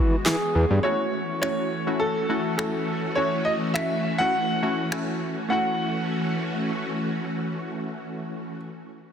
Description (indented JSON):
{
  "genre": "dance-pop",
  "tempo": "103 BPM",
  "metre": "4/4",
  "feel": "straight",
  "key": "F# minor",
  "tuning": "A4 = 440 Hz",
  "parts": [
    { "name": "warm grand piano", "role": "melody", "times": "0.0-8.6 s", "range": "F#4 to F#5", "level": "-27 LUFS", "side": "right 1 dB", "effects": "digital delay" },
    { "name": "glassy wavetable pluck", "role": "accompaniment", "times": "0.0-8.6 s", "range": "G#3 to G#4", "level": "-29 LUFS", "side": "left 1 dB", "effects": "chorus" },
    { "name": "string machine, violas", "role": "sustained chords", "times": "0.0-8.6 s", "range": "E3 to F#4", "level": "-28 LUFS", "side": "equal", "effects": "ensemble chorus" },
    { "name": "fat analog bass", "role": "bass", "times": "0.0-0.8 s", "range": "E2 to E3", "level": "-21 LUFS", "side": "equal", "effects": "none" },
    { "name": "electronic handclaps, snare drum and finger snaps", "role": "drums", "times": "0.3-5.1 s", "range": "none", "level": "-28 LUFS", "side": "equal", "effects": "soft clipping on snare" }
  ],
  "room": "moderate plate reverb, RT60 2.1 s",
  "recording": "dense, heavily limited modern master",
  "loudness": "-23 LUFS",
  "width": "side -8 dB against mid",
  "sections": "0.8-5.5 A section; 5.5-7.8 B section",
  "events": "none",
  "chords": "0.0 Eadd9; 0.8 F#m7"
}